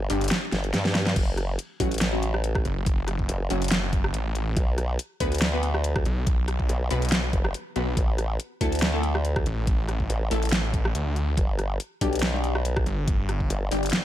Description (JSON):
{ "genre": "heavy wobble dubstep", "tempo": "141 BPM", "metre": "4/4", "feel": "swing 54% on 16ths, half-time", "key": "F# phrygian", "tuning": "A4 = 439 Hz", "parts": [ { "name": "formant-sweep wobble bass", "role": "bass", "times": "0.0-13.7 s", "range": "F#1 to G2", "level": "-26 LUFS", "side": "equal", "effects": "chorus, overdrive" }, { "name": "orchestra-hit-like synth stab", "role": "stabs", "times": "0.1-13.9 s", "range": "F#3 to B4", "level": "-31 LUFS", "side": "left 2 dB", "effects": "built-in reverb, tape echo" }, { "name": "snarling distorted saw bass", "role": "bass", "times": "0.1-13.9 s", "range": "F#1 to D2", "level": "-27 LUFS", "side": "equal", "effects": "distortion, overdrive" }, { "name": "dubstep drum kit", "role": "drums", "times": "0.1-14.0 s", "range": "crash cymbal, hi-hat, rim click, snare drum", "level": "-28 LUFS", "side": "equal", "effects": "overdrive" }, { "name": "electronic kick drum", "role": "drums", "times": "1.2-13.5 s", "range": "none", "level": "-26 LUFS", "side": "equal", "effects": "overdrive" } ], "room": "digital ambience", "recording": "none", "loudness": "-23 LUFS", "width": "side -12 dB against mid", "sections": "0.0-14.0 A section", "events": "kick drops out 0.3-1.2; drum fill 0.5-1.2", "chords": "0.0 G5; 1.2 F#m; 4.6 Bm; 8.0 Asus4; 11.4 G", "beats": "0.31 0.74 | 1.16 1.59 2.01 2.44 | 2.86 3.29 3.71 4.14 | 4.57 4.99 5.42 5.84 | 6.27 6.69 7.12 7.54 | 7.97 8.40 8.82 9.25 | 9.67 10.10 10.52 10.95 | 11.38 11.80 12.23 12.65 | 13.08 13.50 13.93" }